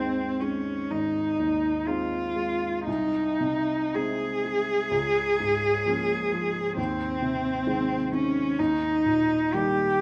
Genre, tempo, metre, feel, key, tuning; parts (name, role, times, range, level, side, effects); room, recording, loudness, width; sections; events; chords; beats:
classical, romantic duo for cello and grand piano; 53-68 BPM; 4/4; rubato; Ab major; A4 = 440 Hz
rich cello; melody; 0.0-10.0 s; C4 to Ab4; -27 LUFS; equal
warm baby grand piano; accompaniment; 0.0-10.0 s; Ab1 to Eb4; -32 LUFS; equal
wet scoring stage reverb, RT60 1.9 s; -26 LUFS; mono
0.0-10.0 A section
0.0 Ab; 2.9 Ab/C; 4.9 Bbm7/Db; 6.8 Ab/Eb; 8.6 Eb
0.91 1.87 | 2.87 3.96 4.92 5.87 | 6.78 7.67 8.59 9.54